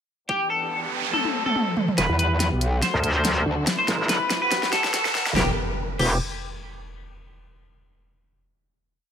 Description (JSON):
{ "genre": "heavy wobble dubstep", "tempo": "142 BPM", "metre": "4/4", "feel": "swing 54% on 16ths, half-time", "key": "E minor", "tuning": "A4 = 442 Hz", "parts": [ { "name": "clean electric guitar", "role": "melody", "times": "0.3-6.2 s", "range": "G4 to C5", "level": "-25 LUFS", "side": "left 1 dB", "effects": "lush chorus, ping-pong delay" }, { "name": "bright studio string section", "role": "sustained chords", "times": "0.3-5.6 s", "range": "C3 to A4", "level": "-33 LUFS", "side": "left 1 dB", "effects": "sidechain pumping, low-pass filter" }, { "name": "electronic kick drum", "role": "drums", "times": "0.3-0.4 s", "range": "none", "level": "-33 LUFS", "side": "equal", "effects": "overdrive, high-pass filter on kick" }, { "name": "noise sweep, riser and impact", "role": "sound effects", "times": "0.7-7.0 s", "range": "none", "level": "-32 LUFS", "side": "right 2 dB", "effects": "none" }, { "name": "dubstep drum kit", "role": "drums", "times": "1.1-6.1 s", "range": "crash cymbal, hi-hat, snare drum, toms", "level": "-26 LUFS", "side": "equal", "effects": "overdrive" }, { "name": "metallic wobble bass", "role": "bass", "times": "2.0-6.2 s", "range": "E1 to D2", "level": "-22 LUFS", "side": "equal", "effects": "chorus, overdrive" }, { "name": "metallic wobble bass", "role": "bass", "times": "2.1-5.3 s", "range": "A1 to E2", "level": "-22 LUFS", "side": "equal", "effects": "chorus, overdrive" } ], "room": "light reverb", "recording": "high-pass filter", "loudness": "-20 LUFS", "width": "side -8 dB against mid", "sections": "0.3-2.0 intro; 2.0-5.4 build; 5.4-7.0 final chord", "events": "filter sweep on string section 0.3-2.0, 2.0-5.4; noise sweep 0.7-2.0; drum fill 1.1-2.0, 2.0-5.4; kick drops out 1.6-2.0; build-up 2.0-5.4; filter sweep 2.0-5.4; riser 3.6-5.4", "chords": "0.3 Em7; 1.1 F#dim; 2.0 Em; 2.8 D; 3.7 Am; 4.5 B; 5.4 Em" }